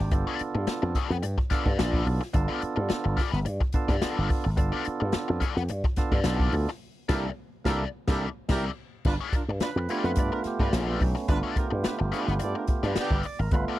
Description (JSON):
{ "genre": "funk", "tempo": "107 BPM", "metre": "4/4", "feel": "straight", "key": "G mixolydian", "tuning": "A4 = 441 Hz", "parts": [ { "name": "biting overdriven guitar", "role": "accompaniment", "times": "0.0-13.8 s", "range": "Bb3 to D5", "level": "-33 LUFS", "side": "left 9 dB", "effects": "wah" }, { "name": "percussive tonewheel organ", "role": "stabs", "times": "0.0-13.8 s", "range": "A3 to D5", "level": "-31 LUFS", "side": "right 4 dB", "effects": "overdrive" }, { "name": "slap bass with an envelope filter", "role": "bass", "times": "0.0-13.6 s", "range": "G1 to G2", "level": "-28 LUFS", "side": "equal", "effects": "none" }, { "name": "swinging big-band drum kit", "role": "drums", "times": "0.1-13.7 s", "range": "crash cymbal, hi-hat, kick drum, snare drum", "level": "-28 LUFS", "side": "equal", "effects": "none" }, { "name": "warm horn section", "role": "second line", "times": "7.1-13.2 s", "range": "B3 to D5", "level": "-33 LUFS", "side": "right 3 dB", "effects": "none" } ], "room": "little or no reverb", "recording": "dry, close 1970s-style studio recording", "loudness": "-25 LUFS", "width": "side -15 dB against mid", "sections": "0.0-9.1 A section; 9.1-13.8 B section", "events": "band accent 6.8-9.1; tonewheel organ solo 9.1-13.8", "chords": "0.1 G9; 6.8 C13; 9.1 G9" }